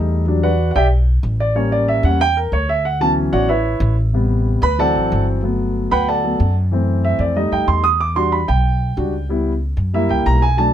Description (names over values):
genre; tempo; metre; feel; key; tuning
Afro-Cuban jazz; 186 BPM; 4/4; straight; D major, G major from 5.4 s; A4 = 440 Hz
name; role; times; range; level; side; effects
warm concert grand piano; accompaniment; 0.0-10.7 s; C3 to Eb6; -17 LUFS; right 1 dB; none
upright bass; bass; 0.0-10.7 s; G1 to F#2; -18 LUFS; equal; none
room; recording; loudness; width
little or no reverb; close, detailed microphones; -15 LUFS; side -10 dB against mid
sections
0.0-5.4 A section; 5.4-10.7 A section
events
grand piano solo 0.0-10.7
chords
0.3 Em9; 1.6 A7b9; 2.9 Dmaj13; 4.1 Am7; 4.8 D7; 5.4 Gmaj9; 6.7 F#m7b5; 7.4 F9; 8.0 Em7; 9.3 C#m7b5; 9.9 F#7b9